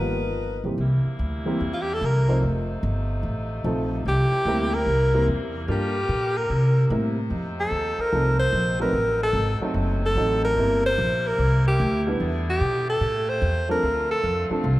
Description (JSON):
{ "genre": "jazz, big band swing", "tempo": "147 BPM", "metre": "4/4", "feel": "swing 65% on 8ths", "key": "C mixolydian", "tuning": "A4 = 440 Hz", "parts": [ { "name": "mellow saxophone section", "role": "melody", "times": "0.0-0.6 s", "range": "F3 to B4", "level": "-30 LUFS", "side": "left 3 dB", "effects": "none" }, { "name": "dark baby grand piano", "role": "accompaniment", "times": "0.0-14.6 s", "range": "D#3 to C5", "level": "-29 LUFS", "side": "right 1 dB", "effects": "none" }, { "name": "upright bass", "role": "bass", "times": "0.0-14.8 s", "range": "F1 to C3", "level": "-24 LUFS", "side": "equal", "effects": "none" }, { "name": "bright saxophone section", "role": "sustained chords", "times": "0.8-14.8 s", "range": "C3 to Bb4", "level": "-34 LUFS", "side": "left 1 dB", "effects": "none" }, { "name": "clear alto saxophone", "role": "melody", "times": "1.7-14.5 s", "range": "F4 to C5", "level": "-24 LUFS", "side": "equal", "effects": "none" } ], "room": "moderate recital hall reverb, RT60 1.6 s", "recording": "none", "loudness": "-21 LUFS", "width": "side -16 dB against mid", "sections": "0.8-14.8 A section", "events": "alto saxophone solo 0.8-14.8", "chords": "0.0 G7alt; 0.8 C7; 2.4 F7; 4.1 C7; 5.7 Gm7; 6.5 C7; 7.3 F7; 8.9 F#dim7; 10.6 C7; 12.2 Em7; 13.0 A7b9; 13.8 Dm7" }